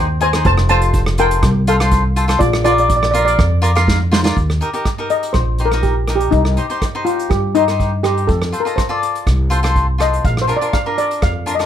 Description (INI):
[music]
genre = calypso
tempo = 122 BPM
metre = 4/4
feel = straight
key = Eb major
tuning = A4 = 440 Hz
[part]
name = steel pan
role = melody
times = 0.0-11.7 s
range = Eb4 to A5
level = -18 LUFS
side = left 1 dB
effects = none
[part]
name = cavaquinho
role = accompaniment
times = 0.0-11.7 s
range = D4 to F5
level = -20 LUFS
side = left 2 dB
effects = none
[part]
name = upright bass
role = bass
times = 0.0-11.7 s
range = F1 to G2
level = -17 LUFS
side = equal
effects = none
[part]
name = unplugged drum kit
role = drums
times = 0.2-11.7 s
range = hi-hat, kick drum, rim click, snare drum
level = -20 LUFS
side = right 1 dB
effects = none
[sound]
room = light reverb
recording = dark, warm production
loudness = -13 LUFS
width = side -10 dB against mid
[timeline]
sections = 0.0-4.4 A section; 4.4-11.7 B section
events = drum fill 3.9-4.4; steel pan solo 4.4-11.7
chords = 0.5 F; 2.4 Bb; 4.4 Eb; 6.3 Cm; 8.3 F; 10.2 Bb